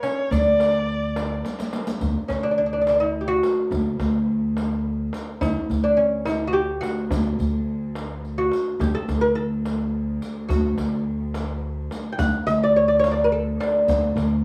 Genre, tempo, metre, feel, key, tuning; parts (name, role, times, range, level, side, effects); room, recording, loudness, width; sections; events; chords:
Persian modal ensemble; 71 BPM (dotted quarters); 6/8; straight; D dastgah chahargah; A4 = 439 Hz
lute; melody; 0.0-14.2 s; C#4 to G5; -24 LUFS; equal
dark kamancheh; second line; 0.0-1.7 s; C#5 to D5; -32 LUFS; equal
riq; percussion; 0.0-14.3 s; -36 LUFS; equal
tombak; percussion; 0.0-14.3 s; -33 LUFS; equal
upright bass; bass; 0.3-14.4 s; D2; -27 LUFS; equal
clear chamber cello section; drone; 2.0-14.4 s; D2; -33 LUFS; equal
moderate studio reverb, RT60 0.6 s; studio reverb; -23 LUFS; mono
0.0-2.0 A section; 2.0-14.4 B section
drum fill 1.4-2.0